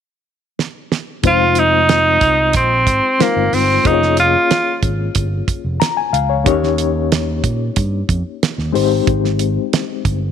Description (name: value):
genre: lush 1970s-style soul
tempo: 92 BPM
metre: 4/4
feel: straight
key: F minor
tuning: A4 = 440 Hz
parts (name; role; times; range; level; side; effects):
- damped 70s drum kit; drums; 0.6-10.2 s; hi-hat, kick drum, snare drum; -19 LUFS; right 5 dB; none
- reed electric piano; accompaniment; 1.2-10.3 s; Ab3 to Bb5; -19 LUFS; left 12 dB; fast tremolo
- fingered electric bass; bass; 1.2-10.3 s; F1 to Bb2; -19 LUFS; right 1 dB; none
- clear tenor saxophone; melody; 1.3-4.8 s; Bb3 to F4; -13 LUFS; right 2 dB; none
room: light reverb, small room ambience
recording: 1960s-style stereo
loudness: -13 LUFS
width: side -8 dB against mid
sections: 0.0-1.2 A section; 1.2-10.3 B section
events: drum fill 0.6-1.2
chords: 0.0 N.C.; 1.2 Fm7; 3.8 Bbm7/F; 6.5 Eb7; 8.7 Abmaj7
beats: 0.58 | 1.24 1.89 2.54 3.20 | 3.85 4.50 5.16 5.81 | 6.46 7.11 7.77 8.42 | 9.07 9.73